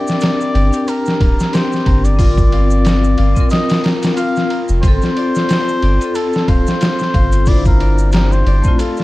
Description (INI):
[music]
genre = trip hop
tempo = 91 BPM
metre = 4/4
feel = swing 56% on 16ths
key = G minor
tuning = A4 = 440 Hz
[part]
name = trumpet with cup mute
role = melody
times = 0.0-9.0 s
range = F4 to F5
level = -22 LUFS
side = left 1 dB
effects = tape echo
[part]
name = vibraphone with hard mallets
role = accompaniment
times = 0.0-9.0 s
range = A3 to C5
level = -22 LUFS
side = left 1 dB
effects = harmonic tremolo
[part]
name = warbly tape-like pad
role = sustained chords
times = 0.0-9.0 s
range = C4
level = -23 LUFS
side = left 2 dB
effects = chorus, built-in reverb
[part]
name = Celtic harp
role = arpeggios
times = 0.0-9.0 s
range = E4 to Bb5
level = -25 LUFS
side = left 4 dB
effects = tape echo
[part]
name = trip hop sampler-style drum kit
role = drums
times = 0.1-9.0 s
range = hi-hat, kick drum, ride cymbal, snare drum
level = -16 LUFS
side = equal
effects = none
[part]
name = maracas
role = percussion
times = 0.1-9.0 s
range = none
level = -36 LUFS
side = right 3 dB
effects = none
[part]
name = soft dub sub bass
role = bass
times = 0.5-8.6 s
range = D1 to G1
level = -14 LUFS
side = equal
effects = none
[sound]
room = small room ambience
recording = dark, warm production, vinyl crackle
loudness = -12 LUFS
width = side -18 dB against mid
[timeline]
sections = 0.0-9.0 A section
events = break 8.8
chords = 0.0 Gm; 2.2 Fsus4/G; 4.8 Dm7/G; 7.5 Cadd9/G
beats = 0.21 0.88 1.53 | 2.19 2.85 3.51 4.17 | 4.83 5.49 6.15 6.81 | 7.47 8.13 8.79